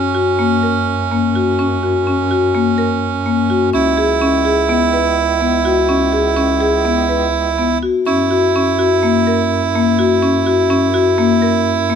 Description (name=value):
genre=contemporary instrumental, chamber music in an uneven meter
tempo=251 BPM (eighths)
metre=9/8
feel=straight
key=unclear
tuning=A4 = 439 Hz
part: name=melodica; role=second line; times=0.0-12.0 s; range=C#4 to E4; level=-17 LUFS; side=right 8 dB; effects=none
part: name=marimba with medium hard mallets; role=arpeggios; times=0.0-12.0 s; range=A#3 to B4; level=-15 LUFS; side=left 5 dB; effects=none
part: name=breathy bass clarinet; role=bass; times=0.0-12.0 s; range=C#2 to F#2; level=-22 LUFS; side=right 1 dB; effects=none
room=light reverb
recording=close, detailed microphones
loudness=-12 LUFS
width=side -7 dB against mid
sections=0.0-12.0 A section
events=none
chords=0.0 F#; 3.7 C#m7; 8.1 F#7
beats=0.15 0.39 0.63 0.88 1.11 1.35 | 1.59 1.83 2.07 2.31 2.55 2.79 3.03 3.27 3.50 | 3.74 3.98 4.22 4.46 4.70 4.93 5.17 5.41 5.65 | 5.89 6.13 6.37 6.61 6.85 7.09 7.34 7.58 7.83 | 8.07 8.31 8.55 8.79 9.03 9.27 9.51 9.75 9.99 | 10.23 10.46 10.70 10.94 11.18 11.42 11.66 11.89